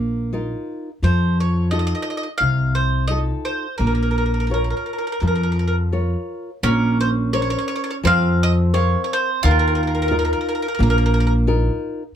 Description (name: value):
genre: italian folk, Italian serenade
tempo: 86 BPM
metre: 4/4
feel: swing 54% on 8ths, rubato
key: Bb harmonic minor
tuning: A4 = 440 Hz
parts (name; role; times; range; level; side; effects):
- bowl-back mandolin; melody; 0.0-11.3 s; Bb4 to F5; -22 LUFS; right 1 dB; none
- nylon-string guitar; accompaniment; 0.0-12.0 s; C3 to F5; -23 LUFS; left 1 dB; none
- upright bass; bass; 0.0-11.7 s; Bb1 to F2; -20 LUFS; equal; none
- bowl-back mandolin; second line; 6.6-12.2 s; C4 to F4; -26 LUFS; right 3 dB; none
room: moderate small room reverb, RT60 0.5 s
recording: none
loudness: -17 LUFS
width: side -9 dB against mid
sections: 0.0-6.6 A section; 6.6-12.2 A section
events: none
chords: 0.0 Ebsus2; 1.0 F7; 3.8 Bbm; 6.6 Bbmadd9; 9.4 Ebsus2